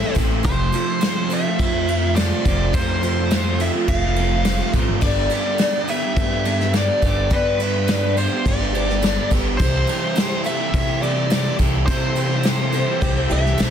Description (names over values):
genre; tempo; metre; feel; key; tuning
folk rock and heartland rock; 105 BPM; 4/4; straight; C major; A4 = 441 Hz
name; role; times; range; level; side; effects
nasal lead guitar with a parked wah; melody; 0.0-13.7 s; B4 to F5; -25 LUFS; right 1 dB; overdrive
picked twelve-string acoustic guitar; accompaniment; 0.0-13.7 s; G2 to A4; -27 LUFS; left 5 dB; wide subtle chorus
bright tonewheel organ; sustained chords; 0.0-13.7 s; F4 to C6; -36 LUFS; equal; none
crunchy overdriven guitar; riff; 0.0-13.7 s; F2 to G4; -24 LUFS; right 2 dB; none
tambourine; percussion; 0.1-13.7 s; none; -40 LUFS; right 7 dB; none
upright bass; bass; 0.2-13.7 s; F1 to C3; -22 LUFS; equal; none
soft brush drum kit; drums; 0.2-13.7 s; crash cymbal, kick drum, ride cymbal, snare drum; -22 LUFS; equal; none
dark upright piano; second line; 12.7-13.7 s; E4 to C5; -28 LUFS; left 1 dB; none
room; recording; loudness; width
studio reverb; dense, heavily limited modern master; -17 LUFS; side -8 dB against mid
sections
0.0-13.7 A section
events
none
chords
0.5 F; 5.0 Gadd9; 9.6 C6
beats
| 0.45 1.02 1.60 2.17 | 2.74 3.31 3.88 4.45 | 5.03 5.60 6.17 6.74 | 7.31 7.88 8.45 9.02 | 9.60 10.17 10.74 11.31 | 11.88 12.45 13.02 13.59